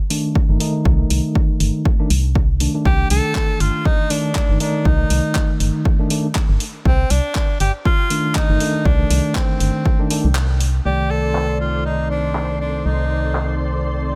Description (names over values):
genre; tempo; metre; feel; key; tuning
deep house; 120 BPM; 4/4; swing 56% on 16ths; C dorian; A4 = 438 Hz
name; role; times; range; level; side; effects
tine electric piano; stabs; 0.1-14.2 s; Eb3 to D5; -25 LUFS; equal; sidechain pumping, tape echo
deep house drum kit; drums; 0.1-13.5 s; handclaps, hi-hat; -29 LUFS; equal; low-pass filter on hats, low-pass filter on snare, low-pass filter on room
electronic kick drum; drums; 0.4-10.0 s; none; -20 LUFS; equal; none
organ-like FM bass; bass; 0.5-14.2 s; G1 to C2; -21 LUFS; equal; sidechain pumping
bright tenor saxophone; melody; 2.9-13.6 s; C4 to A4; -26 LUFS; equal; tape echo
soft string machine; sustained chords; 10.9-14.2 s; Eb3 to D5; -31 LUFS; equal; ensemble chorus, sidechain pumping
analog string pad; texture; 10.9-14.2 s; C5 to C6; -36 LUFS; equal; ensemble chorus
room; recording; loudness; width
digital ambience; none; -18 LUFS; mono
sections
0.0-10.9 A section; 10.9-14.2 B section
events
kick drops out 10.4-10.9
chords
0.0 Cm69